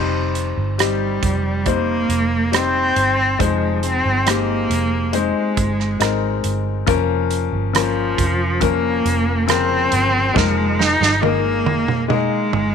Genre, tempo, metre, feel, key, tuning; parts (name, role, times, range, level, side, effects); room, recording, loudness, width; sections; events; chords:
pop ballad; 69 BPM; 4/4; straight; A4 = 440 Hz
bright grand piano; accompaniment; 0.0-12.7 s; Db3 to C5; -21 LUFS; left 13 dB
vintage muted fingered electric bass; bass; 0.0-12.7 s; F1 to Ab1; -23 LUFS; right 2 dB
loose indie drum kit; drums; 0.4-12.7 s; hi-hat, kick drum, rim click, snare drum, toms; -22 LUFS; right 6 dB
clear cello; melody; 0.8-12.7 s; F3 to Eb4; -20 LUFS; right 1 dB
light reverb, studio reverb; 1960s-style stereo with parts hard left and right; -16 LUFS; side -7 dB against mid
0.0-12.7 A section
drum fill 10.4-12.7
0.0 Cm/F; 3.4 Ab/F; 6.9 Bbm/F; 10.4 Ebsus4/F